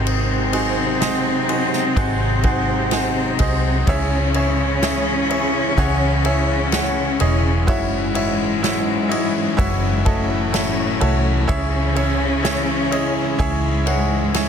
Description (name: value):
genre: pop ballad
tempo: 63 BPM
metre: 4/4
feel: straight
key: C# harmonic minor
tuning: A4 = 441 Hz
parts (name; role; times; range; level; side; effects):
- clear studio cello section; second line; 0.0-14.5 s; G#2 to C#4; -22 LUFS; left 1 dB; none
- bright grand piano; accompaniment; 0.0-14.5 s; G#2 to F#5; -23 LUFS; right 2 dB; none
- airy breathy pad; sustained chords; 0.0-14.5 s; B#2 to E4; -26 LUFS; left 3 dB; chorus
- vintage muted fingered electric bass; bass; 0.0-14.5 s; E1 to C#2; -22 LUFS; equal; none
- unplugged drum kit; drums; 0.1-14.5 s; kick drum, ride cymbal, snare drum; -25 LUFS; equal; none
room: light reverb, small room ambience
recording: dense, heavily limited modern master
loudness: -16 LUFS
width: side -7 dB against mid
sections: 0.0-14.5 A section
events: none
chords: 0.0 G#7; 3.9 C#m; 7.7 F#m7; 11.5 C#m